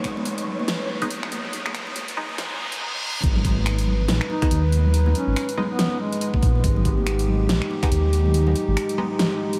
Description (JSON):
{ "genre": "deep dubstep", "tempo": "141 BPM", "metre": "4/4", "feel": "swing 59% on 16ths, half-time", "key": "G# harmonic minor", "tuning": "A4 = 439 Hz", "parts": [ { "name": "dark analog pad", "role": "sustained chords", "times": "0.0-9.6 s", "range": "G#3 to B4", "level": "-30 LUFS", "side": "equal", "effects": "chorus" }, { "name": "dubstep drum kit", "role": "drums", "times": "0.0-9.6 s", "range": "finger snaps, hi-hat, snare drum", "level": "-31 LUFS", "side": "equal", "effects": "overdrive" }, { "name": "electronic kick drum", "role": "drums", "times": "0.0-7.9 s", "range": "none", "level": "-24 LUFS", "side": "equal", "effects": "overdrive" }, { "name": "riser and reverse cymbal", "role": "sound effects", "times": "0.0-3.2 s", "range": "none", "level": "-36 LUFS", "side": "equal", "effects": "none" }, { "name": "flickering grainy texture", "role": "texture", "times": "0.0-2.8 s", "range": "C#5", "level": "-40 LUFS", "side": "equal", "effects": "built-in reverb, ensemble chorus" }, { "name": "congas", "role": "percussion", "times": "0.2-9.6 s", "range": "none", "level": "-34 LUFS", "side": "equal", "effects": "dub echo" }, { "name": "filtered dub chord stab", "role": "stabs", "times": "1.0-9.1 s", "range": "G#3 to D#4", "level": "-36 LUFS", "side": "equal", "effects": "phaser, dub echo" }, { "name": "dark detuned saw bass", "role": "bass", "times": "3.2-8.8 s", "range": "G#1 to D#2", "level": "-23 LUFS", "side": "equal", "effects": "none" }, { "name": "mellow duduk", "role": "melody", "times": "4.3-6.3 s", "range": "G#3 to D#4", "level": "-34 LUFS", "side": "equal", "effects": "dub echo" } ], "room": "moderate huge ambient reverb, RT60 7.6 s", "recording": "dreamy mix soaked in reverb, vinyl crackle, high-pass filter", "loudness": "-22 LUFS", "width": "mono", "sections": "0.0-3.2 A section; 3.2-9.6 B section", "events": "build-up 0.0-3.2; riser 0.0-2.8; filter sweep 0.0-3.2; reverse cymbal 2.4-3.2; drop 3.2-9.6", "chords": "0.0 G#m", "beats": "0.26 0.68 1.11 | 1.53 1.96 2.38 2.81 | 3.23 3.66 4.09 4.51 | 4.94 5.36 5.79 6.21 | 6.64 7.06 7.49 7.92 | 8.34 8.77 9.19" }